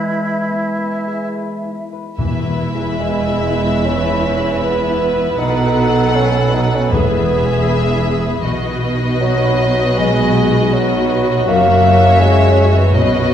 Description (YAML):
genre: classical, slow romantic movement for symphony orchestra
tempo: 78 BPM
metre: 4/4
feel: uneven beats, rubato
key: E major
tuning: A4 = 439 Hz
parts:
  - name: clear clarinet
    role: second line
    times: 0.0-1.8 s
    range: G#3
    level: -23 LUFS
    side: equal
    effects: none
  - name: hollow concert flute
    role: second line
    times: 0.0-1.8 s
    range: E5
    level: -26 LUFS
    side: equal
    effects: none
  - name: warm oboe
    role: second line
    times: 0.0-1.3 s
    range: E4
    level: -24 LUFS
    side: right 2 dB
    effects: none
  - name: mellow bassoon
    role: accompaniment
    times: 0.0-13.3 s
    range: E3 to D#4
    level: -17 LUFS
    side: right 1 dB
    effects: none
  - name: concert harp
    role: arpeggios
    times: 0.0-13.3 s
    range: F#2 to B4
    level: -21 LUFS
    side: left 6 dB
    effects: none
  - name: warm studio violin section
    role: melody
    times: 2.2-13.3 s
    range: D#5 to F#5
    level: -23 LUFS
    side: left 3 dB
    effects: none
  - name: dark studio violin section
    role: second line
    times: 2.2-13.3 s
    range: B4 to C#5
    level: -24 LUFS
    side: right 1 dB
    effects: none
  - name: warm studio viola section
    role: accompaniment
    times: 2.2-13.3 s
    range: E4 to A4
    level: -24 LUFS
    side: left 1 dB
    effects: none
  - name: warm studio cello section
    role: bass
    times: 2.2-13.3 s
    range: E2 to B2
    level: -19 LUFS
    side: right 2 dB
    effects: none
  - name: warm studio double bass section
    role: bass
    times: 2.2-13.3 s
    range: E1 to B1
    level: -21 LUFS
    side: right 3 dB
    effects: none
  - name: timpani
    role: percussion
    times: 2.2-8.0 s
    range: E2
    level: -23 LUFS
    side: equal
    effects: none
room: wet recital hall reverb, RT60 1.5 s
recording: recorded in a church or concert hall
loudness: -13 LUFS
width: side -9 dB against mid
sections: 0.0-2.2 A section; 2.2-13.3 A section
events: none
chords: 0.0 E; 5.4 B7; 6.9 E; 8.5 B; 11.5 F#7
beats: 0.47 1.34 | 2.19 2.99 3.85 4.63 | 5.39 6.16 6.93 7.69 | 8.45 9.22 9.98 10.73 | 11.48 12.21 12.95